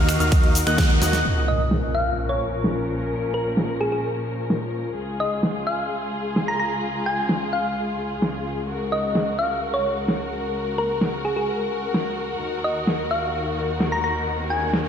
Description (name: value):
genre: EDM, festival progressive house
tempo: 129 BPM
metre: 4/4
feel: straight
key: Bb minor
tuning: A4 = 440 Hz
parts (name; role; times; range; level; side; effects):
- dark studio string section; sustained chords; 0.0-14.9 s; Db2 to Bb4; -26 LUFS; left 2 dB; sidechain pumping, low-pass filter
- clear concert grand piano; arpeggios; 0.0-1.2 s; F6 to Gb6; -29 LUFS; left 1 dB; sidechain pumping, low-pass filter, analog delay
- supersaw chords; riff; 0.0-1.2 s; Bb3 to Gb5; -26 LUFS; right 1 dB; analog chorus, sidechain pumping, low-pass filter, analog delay
- fat analog bass; bass; 0.0-1.2 s; Eb2; -23 LUFS; equal; sidechain pumping
- big-room dance drum kit; drums; 0.1-14.8 s; crash cymbal, finger snaps, hi-hat, ride cymbal, shaker, snare drum; -24 LUFS; equal; low-pass filter on hats, low-pass filter on perc, low-pass filter on snare, low-pass filter on cymbals
- electronic kick drum; drums; 0.3-0.9 s; none; -18 LUFS; equal; overdrive
- impact and riser; sound effects; 1.2-3.1, 13.9-14.9 s; none; -28 LUFS; equal; none
- thumb-piano-like synth pluck; melody; 1.5-14.6 s; Ab4 to Bb5; -26 LUFS; equal; chorus, analog delay
room: moderate lush hall reverb, RT60 2.0 s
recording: dreamy mix soaked in reverb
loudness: -21 LUFS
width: side -8 dB against mid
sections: 0.0-1.2 A section; 1.2-14.9 B section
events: drop 0.0-1.2; band accent 0.8; drum fill 1.0; impact 1.2-3.1; filter sweep on string section 1.2-14.9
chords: 0.0 Ebm; 1.2 Bbm; 5.0 Db; 8.7 Gb/Db; 12.4 Ebm